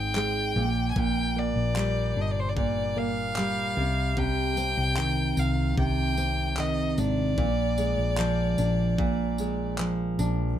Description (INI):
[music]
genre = acoustic pop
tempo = 75 BPM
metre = 4/4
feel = straight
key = unclear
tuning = A4 = 440 Hz
[part]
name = rich violin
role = melody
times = 0.0-9.8 s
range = C5 to Ab5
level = -30 LUFS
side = left 2 dB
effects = none
[part]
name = nylon-string guitar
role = accompaniment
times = 0.0-10.6 s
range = Ab2 to Eb4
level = -28 LUFS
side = right 1 dB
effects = none
[part]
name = hollow-body short-scale fingered electric bass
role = bass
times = 0.0-10.6 s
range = G1 to C2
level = -29 LUFS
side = equal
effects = none
[part]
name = pop drum kit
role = drums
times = 0.2-10.4 s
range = handclaps, kick drum, tambourine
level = -33 LUFS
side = equal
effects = none
[sound]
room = light reverb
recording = none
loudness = -24 LUFS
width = side -10 dB against mid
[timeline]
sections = 0.0-10.6 A section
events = none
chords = 0.0 Ab; 0.6 Gm/Bb; 3.8 Cmadd9; 7.4 Bb7